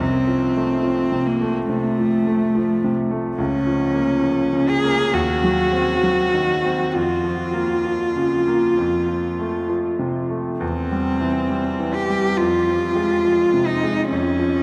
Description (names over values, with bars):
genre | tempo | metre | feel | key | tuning
classical, romantic duo for cello and grand piano | 64-73 BPM | 4/4 | rubato | F minor from 10.6 s | A4 = 439 Hz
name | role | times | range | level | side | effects
rich cello | melody | 0.0-14.6 s | A3 to Ab4 | -22 LUFS | equal | none
bright concert grand piano | accompaniment | 0.0-14.6 s | C2 to C4 | -24 LUFS | equal | none
room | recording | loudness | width
wet cathedral reverb, RT60 5.8 s | in a vast, echoing space | -20 LUFS | mono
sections
0.0-14.6 A section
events
none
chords
0.0 F/C; 3.4 Bbm/Db; 5.1 Cdim/Eb; 7.0 Bbm/F; 8.8 F; 10.6 C/E; 12.4 Fm; 14.1 Bbm/F (rootless)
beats
| 0.01 0.86 1.70 2.56 | 3.39 4.25 5.14 6.05 | 6.95 7.87 8.80 9.71 | 10.62 11.52 12.40 13.26 | 14.12